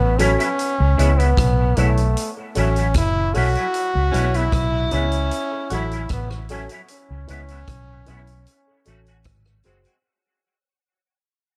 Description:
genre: roots reggae.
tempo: 76 BPM.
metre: 4/4.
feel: straight.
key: C# minor.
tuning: A4 = 439 Hz.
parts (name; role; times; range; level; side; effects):
brilliant trombone; melody; 0.0-9.2 s; A3 to F#4; -26 LUFS; equal; dub echo.
vintage muted fingered electric bass; bass; 0.0-9.8 s; F#1 to C#2; -22 LUFS; equal; tube saturation.
clean electric guitar; accompaniment; 0.2-9.9 s; F#3 to F#4; -30 LUFS; equal; tube saturation, ensemble chorus, dub echo.
dark upright piano; stabs; 0.2-9.8 s; E4 to C#5; -31 LUFS; equal; none.
vintage drum kit; drums; 0.2-10.0 s; hi-hat, kick drum, rim click; -28 LUFS; equal; dub echo.
warm tenor saxophone; second line; 4.1-5.8 s; C#4 to F#4; -33 LUFS; equal; dub echo.
room: light reverb.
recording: none.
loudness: -20 LUFS.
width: mono.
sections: 0.0-10.1 A section.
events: fade-out 0.0-10.1.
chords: 0.0 A6; 0.6 C#m7; 2.2 A6; 3.7 C#m7; 5.3 A6; 6.9 C#m7; 8.5 A6; 9.3 G#7.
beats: | 0.58 1.37 2.16 2.95 | 3.74 4.53 5.32 6.11 | 6.90 7.69 8.47 9.26.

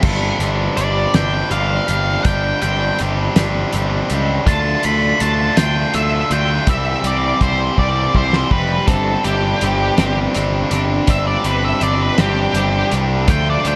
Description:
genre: indie rock.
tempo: 54 BPM (dotted quarters).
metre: 6/8.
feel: straight.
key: unclear.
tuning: A4 = 440 Hz.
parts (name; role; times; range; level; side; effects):
biting overdriven guitar; riff; 0.0-13.8 s; G2 to G4; -23 LUFS; equal; slapback echo.
twelve-string electric guitar; riff; 0.0, 8.9-13.8 s; F3 to D4; -26 LUFS; equal; lush chorus.
fuzz picked electric bass; bass; 0.0-13.8 s; F1 to D2; -22 LUFS; equal; overdrive.
cloth-damped thuddy drum kit; drums; 0.0-13.8 s; crash cymbal, hi-hat, kick drum, snare drum; -21 LUFS; equal; none.
octave-fuzz lead guitar; melody; 0.8-13.8 s; G4 to B5; -23 LUFS; equal; distortion, slapback echo, tape echo.
room: moderate concert hall reverb, RT60 2.1 s.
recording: big arena sound.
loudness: -17 LUFS.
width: mono.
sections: 0.0-13.8 A section.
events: lead electric guitar solo 0.0-13.8; drum fill 7.8-8.9.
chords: 0.0 Gsus4; 4.5 Dm; 6.7 C; 8.9 Gsus4.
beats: | 0.04 1.15 | 2.25 3.36 | 4.47 5.57 | 6.68 7.78 | 8.88 9.99 | 11.09 12.19 | 13.29.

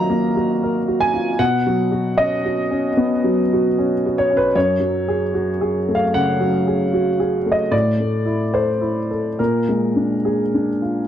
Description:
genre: neoclassical minimalist piano.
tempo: 76 BPM.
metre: 4/4.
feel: rubato.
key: unclear.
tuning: A4 = 440 Hz.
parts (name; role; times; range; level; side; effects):
warm upright piano; solo; 0.0-11.1 s; Gb2 to Bb5; -16 LUFS; equal; none.
room: light reverb.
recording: dry, close 1970s-style studio recording.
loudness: -16 LUFS.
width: side -10 dB against mid.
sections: 0.0-11.1 A section.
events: none.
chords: 0.0 Ebmadd9; 1.4 Badd9; 4.5 Gbmadd9; 7.7 Am; 9.4 Bb7.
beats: 0.61 | 1.39 2.18 2.96 3.75 | 4.54 5.34 6.13 6.92 | 7.72 8.54 9.38 10.24.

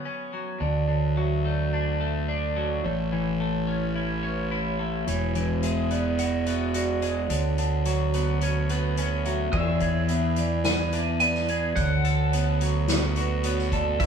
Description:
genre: post-rock.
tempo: 108 BPM.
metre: 4/4.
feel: straight.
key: unclear.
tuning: A4 = 443 Hz.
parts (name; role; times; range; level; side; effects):
twelve-string electric guitar; arpeggios; 0.0-14.1 s; A2 to A4; -29 LUFS; left 1 dB; none.
vibraphone with soft mallets; arpeggios; 0.6-14.1 s; B4 to E5; -32 LUFS; right 4 dB; none.
fuzz fingered electric bass; bass; 0.6-14.1 s; E1 to E2; -26 LUFS; right 1 dB; overdrive.
soft-mallet drum kit; drums; 5.1-14.1 s; crash cymbal, hi-hat, kick drum, snare drum; -31 LUFS; equal; none.
twelve-string electric guitar; melody; 9.5-14.1 s; E5 to G#5; -29 LUFS; left 1 dB; phaser.
muted studio string section; sustained chords; 14.0-14.1 s; C#3 to E4; -34 LUFS; left 1 dB; none.
room: wet stone room reverb, RT60 1.4 s.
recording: band playing live in one room.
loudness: -23 LUFS.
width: side -7 dB against mid.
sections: 0.6-9.5 A section; 9.5-14.1 B section.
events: none.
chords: 0.0 Bsus2; 0.6 D; 2.8 A; 5.1 Eadd9; 7.3 Bmadd9/D; 9.5 E7; 11.8 D6.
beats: 0.05 | 0.61 1.17 1.73 2.28 | 2.84 3.40 3.96 4.51 | 5.07 5.63 6.19 6.75 | 7.30 7.86 8.42 8.98 | 9.54 10.10 10.65 11.21 | 11.77 12.33 12.88 13.44 | 14.00.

